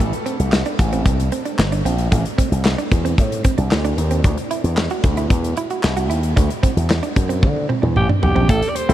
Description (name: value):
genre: early-eighties boogie funk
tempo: 113 BPM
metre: 4/4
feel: straight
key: A dorian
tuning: A4 = 440 Hz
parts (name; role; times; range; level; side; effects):
- direct-recorded clean electric guitar; riff; 0.0-8.9 s; A3 to F#4; -25 LUFS; right 5 dB; wide subtle chorus
- slap bass with an envelope filter; bass; 0.0-8.9 s; G1 to D3; -19 LUFS; equal; none
- modern studio drum kit; drums; 0.0-8.9 s; handclaps, hi-hat, kick drum, snare drum, toms; -19 LUFS; equal; none
- growling alto saxophone; melody; 8.0-8.9 s; G4 to D5; -25 LUFS; equal; none
- warm grand piano; accompaniment; 8.9 s; G3 to A4; -30 LUFS; left 2 dB; none
room: moderate huge ambient reverb, RT60 7.0 s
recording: dreamy mix soaked in reverb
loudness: -16 LUFS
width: side -13 dB against mid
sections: 0.0-8.5 A section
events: drum fill 7.4-8.5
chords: 0.0 Am; 4.2 D9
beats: | 0.00 0.53 1.06 1.59 | 2.12 2.65 3.18 3.71 | 4.25 4.78 5.31 5.84 | 6.37 6.90 7.43 7.96 | 8.49